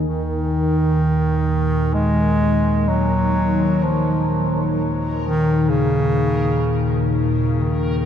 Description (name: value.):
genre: dark ambient drone.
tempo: free time.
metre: none.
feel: none.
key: unclear.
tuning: A4 = 441 Hz.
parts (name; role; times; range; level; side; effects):
deep dark ambient pad; sustained chords; 0.0-8.1 s; Eb3 to Bb5; -25 LUFS; left 3 dB; chorus, built-in reverb.
analog drone; drone; 0.0-8.1 s; Eb2 to Bb3; -21 LUFS; equal; chorus.
warm bass clarinet; melody; 0.1-8.1 s; Db3 to Ab3; -20 LUFS; equal; ping-pong delay.
backwards swelling texture; texture; 0.7-8.1 s; Bb4; -40 LUFS; right 2 dB; built-in reverb.
room: wet huge ambient reverb, RT60 7.8 s.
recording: dark, warm production.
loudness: -16 LUFS.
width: side -9 dB against mid.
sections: 0.1-8.1 A section.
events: fade-in on synth texture 0.1-8.1.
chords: 0.1 Eb5.